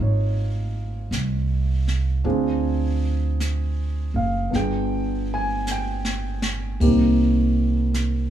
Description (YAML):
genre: jazz ballad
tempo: 53 BPM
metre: 4/4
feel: swing 67% on 8ths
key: unclear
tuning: A4 = 440 Hz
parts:
  - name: warm concert grand piano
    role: accompaniment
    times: 0.0-8.3 s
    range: Bb3 to Ab5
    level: -24 LUFS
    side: equal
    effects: none
  - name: upright bass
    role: bass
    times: 0.0-8.3 s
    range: Gb1 to D2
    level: -22 LUFS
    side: right 2 dB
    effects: none
  - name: jazz brush drum kit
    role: drums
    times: 1.1-8.3 s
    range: brushed snare drum, hi-hat, kick drum, ride cymbal, snare drum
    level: -28 LUFS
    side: equal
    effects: none
room: little or no reverb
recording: none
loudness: -20 LUFS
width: side -11 dB against mid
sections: 0.0-8.3 A section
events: drum fill 5.7-6.8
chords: 0.0 Db69; 2.2 Dm7b5; 4.5 G7b9; 6.8 Cm7